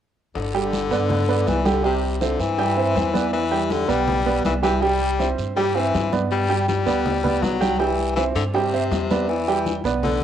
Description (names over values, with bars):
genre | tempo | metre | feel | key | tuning
latin, salsa | 161 BPM | 4/4 | straight | G major | A4 = 440 Hz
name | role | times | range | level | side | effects
bright baritone saxophone | second line | 0.4-10.2 s | C3 to G3 | -23 LUFS | left 7 dB | cassette tape
upright bass | bass | 0.4-10.2 s | G1 to G2 | -27 LUFS | equal | none
bongos | percussion | 0.4-10.2 s | none | -34 LUFS | left 8 dB | none
congas | percussion | 0.4-10.2 s | none | -28 LUFS | left 1 dB | none
guiro | percussion | 0.4-10.2 s | none | -39 LUFS | right 8 dB | none
clear concert grand piano | accompaniment | 0.5-10.2 s | G3 to G5 | -22 LUFS | right 6 dB | cassette tape
room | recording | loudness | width
light reverb, studio reverb | home recording on cassette | -19 LUFS | side -10 dB against mid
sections
0.4-10.2 A section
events
none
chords
0.4 G; 1.8 C; 3.3 Em7; 4.8 C; 6.3 G; 7.8 C; 9.3 Em7